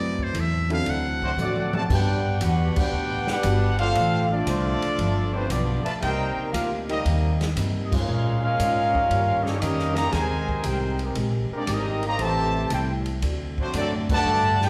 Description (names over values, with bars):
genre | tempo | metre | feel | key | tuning
jazz, big band swing | 116 BPM | 4/4 | swing 69% on 8ths | unclear | A4 = 440 Hz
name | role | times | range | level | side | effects
trumpet with metal mute | melody | 0.0-1.8 s | C5 to F#5 | -32 LUFS | equal | none
clear concert grand piano | accompaniment | 0.0-1.4 s | F#3 to B4 | -32 LUFS | equal | none
picked steel-string acoustic guitar | accompaniment | 0.0-14.6 s | G2 to Bb4 | -35 LUFS | equal | none
upright bass | bass | 0.0-14.7 s | G1 to Bb2 | -28 LUFS | equal | none
swinging big-band drum kit | drums | 0.2-14.7 s | crash cymbal, hi-hat, kick drum, ride cymbal, snare drum, toms | -34 LUFS | equal | none
clear trumpet section | melody | 1.2-14.7 s | A3 to Bb5 | -29 LUFS | equal | none
mellow trombone section | second line | 1.2-14.7 s | C3 to G4 | -32 LUFS | equal | none
warm trombone section | sustained chords | 2.8-14.2 s | G3 to C5 | -38 LUFS | equal | none
room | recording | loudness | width
wet large studio reverb, RT60 1.3 s | heard from further back in the room | -24 LUFS | mono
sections
0.0-1.9 A section; 1.9-14.7 B section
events
muted trumpet solo 0.0-1.9; drum fill 1.4-1.9; band accent 2.7, 7.8, 14.0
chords
0.0 F#m7b5; 0.9 D7; 1.9 Gmaj7; 4.0 Dm7; 5.0 G7; 6.0 Cm7; 8.1 Bbm7; 9.1 Eb7; 10.1 Abmaj9; 12.2 Am7; 13.2 D7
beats
0.35 0.87 1.38 | 1.90 2.41 2.93 3.44 | 3.96 4.47 4.99 5.50 | 6.02 6.53 7.05 7.56 | 8.08 8.59 9.11 9.62 | 10.13 10.65 11.16 11.68 | 12.20 12.71 13.23 13.74 | 14.26